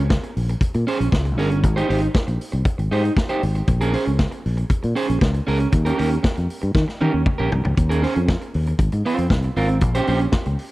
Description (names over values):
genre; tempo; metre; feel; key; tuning
disco; 117 BPM; 4/4; straight; Bb dorian; A4 = 440 Hz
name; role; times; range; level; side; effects
electric guitar at the edge of break-up; accompaniment; 0.0-10.5 s; C4 to C5; -24 LUFS; right 3 dB; spring reverb
fingered electric bass; bass; 0.0-10.5 s; G1 to Eb3; -20 LUFS; equal; none
vintage drum kit; drums; 0.1-10.7 s; hi-hat, kick drum, snare drum, toms; -21 LUFS; equal; none
room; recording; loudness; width
little or no reverb; dry, close 1970s-style studio recording; -18 LUFS; side -18 dB against mid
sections
0.0-7.8 A section; 7.8-10.7 B section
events
drum fill 6.8-7.8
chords
0.0 Bbm7; 1.6 Abmaj7; 3.7 Bbm7; 5.7 Eb7; 7.8 Eb7sus4; 8.8 Ab69; 9.8 Bbm69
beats
0.10 0.61 1.13 | 1.64 2.15 2.66 3.17 | 3.68 4.19 4.71 5.22 | 5.73 6.24 6.75 7.26 | 7.77 8.28 8.79 9.31 | 9.82 10.33